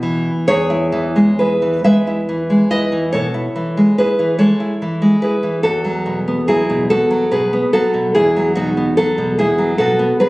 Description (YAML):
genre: classical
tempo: 48 BPM (dotted quarters)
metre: 12/8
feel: rubato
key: E major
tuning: A4 = 440 Hz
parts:
  - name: nylon-string guitar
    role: accompaniment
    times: 0.0-10.3 s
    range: E2 to E5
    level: -13 LUFS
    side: equal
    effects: none
room: moderate small room reverb, RT60 0.5 s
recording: recorded on a phone in the room, studio reverb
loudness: -13 LUFS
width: side -21 dB against mid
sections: 0.5-10.3 A section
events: none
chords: 0.5 E; 5.6 B7(no3)/E